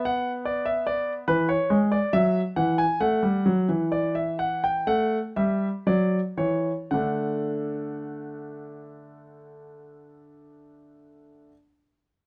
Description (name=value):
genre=classical, baroque-style two-part invention for grand piano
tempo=55-75 BPM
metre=4/4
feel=straight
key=D major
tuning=A4 = 440 Hz
part: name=warm concert grand piano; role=solo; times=0.0-11.5 s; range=D3 to G#5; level=-25 LUFS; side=equal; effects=none
room=light reverb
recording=close, detailed microphones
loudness=-25 LUFS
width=mono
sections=0.0-6.9 A section; 6.9-11.2 B section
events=slowing down 0.0-6.9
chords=0.0 Bm; 1.3 E; 3.0 N.C.; 4.9 A7; 6.9 D